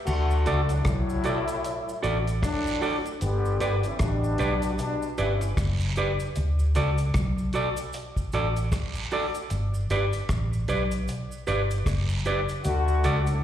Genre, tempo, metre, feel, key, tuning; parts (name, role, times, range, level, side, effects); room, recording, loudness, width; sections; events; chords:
roots reggae; 76 BPM; 4/4; swing 59% on 16ths; D major; A4 = 444 Hz
mellow trombone section; second line; 0.1-5.5, 12.6-13.4 s; A2 to G4; -29 LUFS; left 3 dB; tape echo, plate reverb, slapback echo
vintage muted fingered electric bass; bass; 0.1-13.4 s; F#1 to D2; -25 LUFS; equal
cloth-damped thuddy drum kit; drums; 0.1-13.4 s; crash cymbal, hi-hat, kick drum, rim click; -31 LUFS; equal
cabasa and guiro; percussion; 0.1-13.4 s; -42 LUFS; right 5 dB
clean electric guitar; accompaniment; 0.5-13.2 s; F#4 to D5; -29 LUFS; right 2 dB; tape echo, plate reverb, slapback echo
light reverb; live gig heard through the venue's PA, recital hall reverb; -24 LUFS; side -10 dB against mid
0.1-13.4 A section
0.1 D; 3.2 G; 6.4 D; 9.5 G; 12.6 D